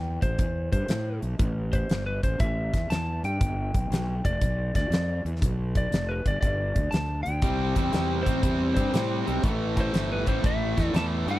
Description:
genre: blues rock power trio and southern rock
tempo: 119 BPM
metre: 4/4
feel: swing 67% on 8ths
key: A minor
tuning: A4 = 441 Hz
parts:
  - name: lightly driven lead guitar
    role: melody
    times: 0.0-11.4 s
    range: Bb4 to A5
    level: -32 LUFS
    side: left 1 dB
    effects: none
  - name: fuzz fingered electric bass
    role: bass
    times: 0.0-11.4 s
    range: F1 to A2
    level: -29 LUFS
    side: equal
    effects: overdrive
  - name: huge arena drum kit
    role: drums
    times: 0.2-11.4 s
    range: hi-hat, kick drum, snare drum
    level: -28 LUFS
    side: equal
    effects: none
  - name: cranked stack guitar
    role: riff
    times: 7.4-11.4 s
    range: A2 to C4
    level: -27 LUFS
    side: equal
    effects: overdrive
room: small room ambience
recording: dry, close 1970s-style studio recording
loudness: -24 LUFS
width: side -16 dB against mid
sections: 0.0-11.4 A section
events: none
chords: 0.0 C; 1.4 A5; 3.4 G; 7.4 C; 9.4 A5

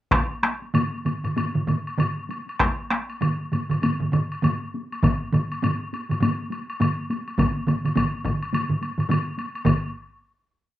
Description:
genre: japanese traditional, taiko drum ensemble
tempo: 96-111 BPM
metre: 4/4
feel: swing 60% on 16ths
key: none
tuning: none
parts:
  - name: solo taiko drums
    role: percussion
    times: 0.1-9.9 s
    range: none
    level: -26 LUFS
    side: left 1 dB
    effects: none
  - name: taiko ensemble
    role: percussion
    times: 0.1-9.9 s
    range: none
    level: -29 LUFS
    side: left 1 dB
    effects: none
  - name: taiko ensemble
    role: percussion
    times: 0.1-10.2 s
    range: none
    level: -28 LUFS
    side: left 2 dB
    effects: none
  - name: taiko ensemble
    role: percussion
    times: 0.1-10.2 s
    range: none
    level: -25 LUFS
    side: right 3 dB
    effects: none
  - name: woodblock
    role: percussion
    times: 0.1-9.9 s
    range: none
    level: -31 LUFS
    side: left 2 dB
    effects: none
room: moderate studio reverb, RT60 0.5 s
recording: rough home demo mix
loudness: -22 LUFS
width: side -13 dB against mid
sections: 0.1-9.7 A section; 9.7-10.8 final hit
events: speeding up 0.1-10.8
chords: none

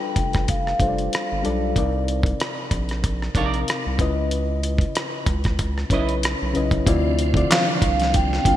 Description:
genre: R&B, neo-soul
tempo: 94 BPM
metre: 4/4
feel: swing 54% on 16ths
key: D phrygian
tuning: A4 = 440 Hz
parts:
  - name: vibraphone with soft mallets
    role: melody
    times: 0.0-1.4, 7.5-8.6 s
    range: F5 to G5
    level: -25 LUFS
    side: right 1 dB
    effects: none
  - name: reed electric piano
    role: accompaniment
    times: 0.0-8.6 s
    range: C3 to F5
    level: -26 LUFS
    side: left 3 dB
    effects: analog chorus
  - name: round analog bass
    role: bass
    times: 0.2-8.6 s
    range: F1 to D2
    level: -24 LUFS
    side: equal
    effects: none
  - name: dusty soul sampler-style drum kit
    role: drums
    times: 0.2-8.6 s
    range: handclaps, hi-hat, kick drum, rim click, snare drum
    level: -23 LUFS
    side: equal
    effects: gated reverb
  - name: electric guitar at the edge of break-up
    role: second line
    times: 3.0-6.1 s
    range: Eb4 to D#5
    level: -31 LUFS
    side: right 7 dB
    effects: lush chorus
  - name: tonewheel organ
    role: sustained chords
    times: 6.9-8.6 s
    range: C3 to D4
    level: -30 LUFS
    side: right 1 dB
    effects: slow rotary speaker, chorus vibrato
room: light reverb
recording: bright 1980s-style digital production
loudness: -19 LUFS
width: side -12 dB against mid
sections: 0.0-6.9 A section; 6.9-8.6 B section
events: none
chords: 0.0 G7; 1.8 Cm9; 4.0 C#m9; 6.9 Dm9

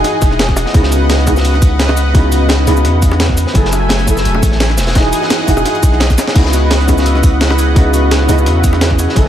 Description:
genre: liquid drum and bass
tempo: 171 BPM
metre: 4/4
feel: swing 54% on 16ths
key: C# minor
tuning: A4 = 440 Hz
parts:
  - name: felt-muted upright piano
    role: accompaniment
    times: 0.0-9.3 s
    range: C#3 to D#5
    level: -16 LUFS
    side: equal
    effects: ensemble chorus, diffuse ambient delay
  - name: lush unison pad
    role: sustained chords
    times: 0.0-9.3 s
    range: A3 to G#5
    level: -20 LUFS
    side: equal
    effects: chorus, sidechain pumping
  - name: long sustained 808-style bass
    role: bass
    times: 0.0-9.3 s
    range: E1 to E2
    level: -13 LUFS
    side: equal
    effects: none
  - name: breakbeat sampler-style drum kit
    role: drums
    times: 0.0-9.2 s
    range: cabasa, crash cymbal, hi-hat, snare drum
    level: -19 LUFS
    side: equal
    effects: studio reverb
  - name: crunchy breakbeat drum kit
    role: drums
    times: 0.0-9.3 s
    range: hi-hat, snare drum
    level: -23 LUFS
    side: equal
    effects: high-pass filter on hats, studio reverb, high-pass filter on snare, high-pass filter on room
  - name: electronic kick drum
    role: drums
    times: 0.2-9.2 s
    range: none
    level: -12 LUFS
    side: equal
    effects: overdrive, studio reverb
  - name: bongos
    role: percussion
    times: 0.2-9.1 s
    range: none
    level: -26 LUFS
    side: equal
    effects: none
  - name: vibraphone with medium hard mallets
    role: arpeggios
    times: 6.5-9.2 s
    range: C#4 to G#4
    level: -20 LUFS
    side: right 2 dB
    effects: auto-pan, diffuse ambient delay
room: light reverb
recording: none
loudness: -9 LUFS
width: side -11 dB against mid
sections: 0.0-9.3 A section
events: drum fill 6.1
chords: 0.0 Emaj9; 0.7 C#m11; 3.6 F#m9; 4.8 Emaj9; 6.4 C#m11

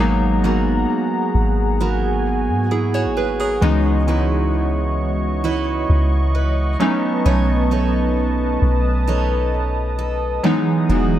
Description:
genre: R&B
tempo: 66 BPM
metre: 4/4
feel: straight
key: G# minor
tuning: A4 = 437 Hz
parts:
  - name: warm analog keys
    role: accompaniment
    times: 0.0-11.2 s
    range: E3 to C#5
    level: -22 LUFS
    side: left 1 dB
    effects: chorus, analog delay
  - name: warm analog pad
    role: sustained chords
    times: 0.0-11.2 s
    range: F#4 to D#6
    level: -25 LUFS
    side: left 2 dB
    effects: chorus
  - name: picked steel-string acoustic guitar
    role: arpeggios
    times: 0.0-11.2 s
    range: E3 to D#5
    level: -23 LUFS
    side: right 6 dB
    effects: analog delay
  - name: soft 808-style bass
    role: bass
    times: 0.0-11.2 s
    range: E1 to G#2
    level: -19 LUFS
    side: equal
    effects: none
room: light reverb, digital ambience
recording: echo-heavy mix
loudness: -16 LUFS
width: side -12 dB against mid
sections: 0.0-11.2 A section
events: none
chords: 0.0 G#m9; 3.6 C#m9; 6.8 B9; 10.4 Emaj9

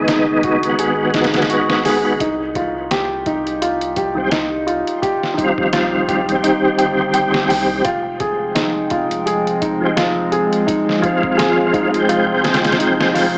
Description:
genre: trip hop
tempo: 85 BPM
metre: 4/4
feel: swing 56% on 16ths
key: unclear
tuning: A4 = 440 Hz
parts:
  - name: tonewheel organ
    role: accompaniment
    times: 0.0-13.4 s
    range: D#3 to G5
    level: -20 LUFS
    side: equal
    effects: chorus vibrato, fast rotary speaker, tremolo, tape echo
  - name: felt-muted upright piano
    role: arpeggios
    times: 0.0-13.4 s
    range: D#4 to G5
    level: -21 LUFS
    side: equal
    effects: vintage 12-bit sampler grit, analog delay
  - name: round analog bass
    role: bass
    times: 0.0-13.4 s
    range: D#1 to C2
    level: -36 LUFS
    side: equal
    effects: none
  - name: trip hop sampler-style drum kit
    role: drums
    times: 0.1-13.3 s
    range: hi-hat, kick drum, snare drum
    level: -25 LUFS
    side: equal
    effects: studio reverb
  - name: warbly tape-like pad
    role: sustained chords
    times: 8.4-13.4 s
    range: F3 to G5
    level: -24 LUFS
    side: equal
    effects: chorus, built-in reverb, phaser
room: light reverb, digital ambience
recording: dry, gritty hardware recording, vinyl crackle, small speaker sound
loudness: -17 LUFS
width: mono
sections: 0.0-13.4 A section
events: none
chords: 0.0 G#m7; 2.2 Cm; 7.8 Fmadd9

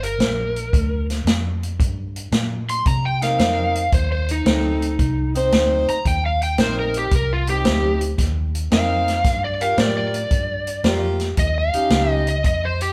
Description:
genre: electric blues shuffle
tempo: 113 BPM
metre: 4/4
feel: swing 68% on 8ths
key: unclear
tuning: A4 = 439 Hz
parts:
  - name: overdriven slide guitar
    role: second line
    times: 0.0-12.9 s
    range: Eb4 to C6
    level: -25 LUFS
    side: equal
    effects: none
  - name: vintage muted fingered electric bass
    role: bass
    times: 0.0-12.9 s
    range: G1 to C3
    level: -26 LUFS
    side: equal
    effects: none
  - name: vintage drum kit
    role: drums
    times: 0.0-12.9 s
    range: hi-hat, kick drum, snare drum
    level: -24 LUFS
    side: equal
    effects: none
  - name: warm saxophone section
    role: stabs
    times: 3.2-12.3 s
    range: Bb3 to C5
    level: -26 LUFS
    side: equal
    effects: none
room: moderate large studio reverb, RT60 1.4 s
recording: band playing live in one room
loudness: -20 LUFS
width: mono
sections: 0.0-12.9 A section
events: electric slide guitar solo 0.0-12.9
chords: 0.0 Gm7; 2.9 Cm7; 9.2 Gm7; 11.4 Eb7

